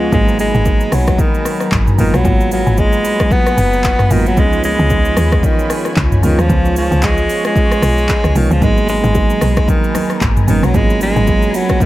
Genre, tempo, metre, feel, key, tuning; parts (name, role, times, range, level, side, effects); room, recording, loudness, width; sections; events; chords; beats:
amapiano; 113 BPM; 4/4; swing 58% on 16ths; G# dorian; A4 = 442 Hz
bright alto saxophone; melody; 0.0-11.9 s; D#3 to B3; -17 LUFS; equal; analog delay
soft electric-piano-like synth keys; accompaniment; 0.0-11.9 s; E#3 to E#4; -20 LUFS; right 3 dB; chorus, analog delay
warm analog pad; sustained chords; 0.0-11.9 s; F#3 to C#6; -24 LUFS; equal; chorus, sidechain pumping
woody log drum bass; bass; 0.0-11.5 s; F#1 to D#2; -16 LUFS; equal
deep house drum kit; drums; 0.1-11.9 s; handclaps, hi-hat, kick drum, rim click, shaker, toms; -16 LUFS; equal
congas and bongos; percussion; 8.6-11.9 s; -25 LUFS; left 6 dB
little or no reverb; echo-heavy mix; -11 LUFS; side -16 dB against mid
0.0-11.9 A section
0.1 G#m9; 4.4 C#7; 8.6 G#m9
| 0.12 0.65 1.19 1.72 | 2.25 2.78 3.31 3.84 | 4.37 4.90 5.43 5.96 | 6.50 7.03 7.56 8.09 | 8.62 9.15 9.68 10.21 | 10.74 11.27 11.80